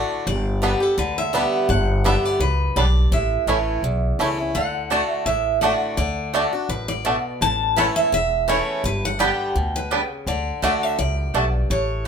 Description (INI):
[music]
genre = bluegrass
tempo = 168 BPM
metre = 4/4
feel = swing 54% on 8ths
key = D major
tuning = A4 = 440 Hz
[part]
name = picked steel-string acoustic guitar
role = melody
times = 0.0-12.1 s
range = A4 to A5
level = -24 LUFS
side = right 1 dB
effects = none
[part]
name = picked swing-style acoustic guitar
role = accompaniment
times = 0.0-12.1 s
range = E2 to G4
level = -25 LUFS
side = left 2 dB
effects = none
[part]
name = upright bass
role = bass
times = 0.3-12.1 s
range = E1 to D2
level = -24 LUFS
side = equal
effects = none
[part]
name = bluegrass banjo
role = melody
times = 0.6-11.4 s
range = G3 to E4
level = -24 LUFS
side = right 3 dB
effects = none
[part]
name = mandolin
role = stabs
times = 4.9-12.1 s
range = A3 to A5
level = -24 LUFS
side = right 2 dB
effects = none
[sound]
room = moderate studio reverb, RT60 0.9 s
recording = minimal, uncompressed stereo recording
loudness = -18 LUFS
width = side -7 dB against mid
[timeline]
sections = 0.0-12.1 A section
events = none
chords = 0.3 G; 3.1 A; 4.6 D; 7.4 A; 8.8 G; 10.3 D